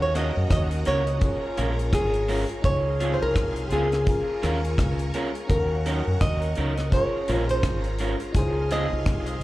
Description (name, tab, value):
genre	lovers rock reggae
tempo	84 BPM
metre	4/4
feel	swing 59% on 16ths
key	unclear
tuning	A4 = 439 Hz
part	flamenco guitar	melody	0.0-9.4 s	G4 to Eb5	-28 LUFS	right 1 dB	tape echo, slapback echo
part	mellow saxophone section	second line	0.0-9.4 s	Db3 to Bb4-22c	-37 LUFS	equal	slapback echo
part	string machine, violins	second line	0.0-9.4 s	Db4 to Db6	-37 LUFS	left 1 dB	ensemble chorus, dub echo, slapback echo
part	FM electric piano	accompaniment	0.0-9.4 s	Db4 to F5	-35 LUFS	left 2 dB	chorus, slapback echo
part	deep dub fingered electric bass	bass	0.0-9.4 s	Ab1 to Gb2	-26 LUFS	equal	none
part	electric guitar through a small old amp	stabs	0.1-8.9 s	Gb3 to Bb4	-32 LUFS	right 2 dB	dub echo, slapback echo
part	deep reggae drum kit	drums	0.2-9.4 s	hi-hat, kick drum, rim click	-25 LUFS	equal	none
room	little or no reverb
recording	live gig heard through the venue's PA, club reverb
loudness	-22 LUFS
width	side -17 dB against mid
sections	0.0-9.4 A section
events	none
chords	0.0 Ebm7; 1.2 Bbm7; 2.6 Dbmaj7; 4.1 Db69; 5.5 Ebm7; 6.9 Bbm7; 8.3 Dbmaj7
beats	0.50 1.22 1.93 | 2.64 3.35 4.07 4.78 | 5.49 6.21 6.92 7.63 | 8.35 9.06